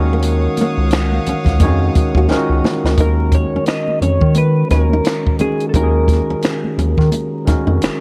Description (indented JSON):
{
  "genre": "R&B, neo-soul",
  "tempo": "87 BPM",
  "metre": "4/4",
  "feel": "swing 60% on 16ths",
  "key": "Eb minor",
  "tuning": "A4 = 439 Hz",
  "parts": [
    { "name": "overdriven tine electric piano", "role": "accompaniment", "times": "0.0-8.0 s", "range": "Eb3 to Db5", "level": "-22 LUFS", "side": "equal", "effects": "none" },
    { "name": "warm studio string section", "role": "sustained chords", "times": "0.0-3.0 s", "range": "Db5 to Eb6", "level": "-28 LUFS", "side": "equal", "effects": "none" },
    { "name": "round analog bass", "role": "bass", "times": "0.0-7.9 s", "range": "F1 to Eb3", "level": "-18 LUFS", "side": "equal", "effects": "none" },
    { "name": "nylon-string guitar", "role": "second line", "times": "0.1-7.8 s", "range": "Bb3 to Gb4", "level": "-26 LUFS", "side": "equal", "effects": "none" },
    { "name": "compact cocktail drum kit", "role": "drums", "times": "0.2-8.0 s", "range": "finger snaps, hi-hat, kick drum, snare drum", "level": "-20 LUFS", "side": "equal", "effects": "none" },
    { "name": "congas", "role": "percussion", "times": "0.2-8.0 s", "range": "none", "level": "-29 LUFS", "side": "equal", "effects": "none" },
    { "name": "electric guitar at the edge of break-up", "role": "melody", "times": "3.0-7.8 s", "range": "Ab4 to Eb5", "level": "-24 LUFS", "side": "equal", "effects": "analog chorus" }
  ],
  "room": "small room ambience",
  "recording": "vinyl crackle",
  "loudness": "-15 LUFS",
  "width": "mono",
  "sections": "0.0-3.0 A section; 3.0-8.0 B section",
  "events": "drum fill 2.3-3.0",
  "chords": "0.0 Ebm9; 3.0 Ebm7",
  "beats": "| 0.22 0.91 1.60 2.29 | 2.98 3.67 4.36 5.05 | 5.74 6.43 7.12 7.81"
}